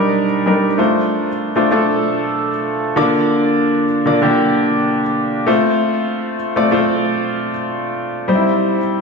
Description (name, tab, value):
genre	pop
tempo	96 BPM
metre	4/4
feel	straight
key	unclear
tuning	A4 = 439 Hz
part	clear grand piano	solo	0.0-9.0 s	D3 to D5	-14 LUFS	equal	tape echo
room	moderate lush hall reverb, RT60 2.6 s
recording	studio reverb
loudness	-14 LUFS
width	side -4 dB against mid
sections	0.8-9.0 A section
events	none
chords	0.0 Ebmaj7; 0.8 Dm7; 3.0 Bb/D; 5.5 F; 8.3 C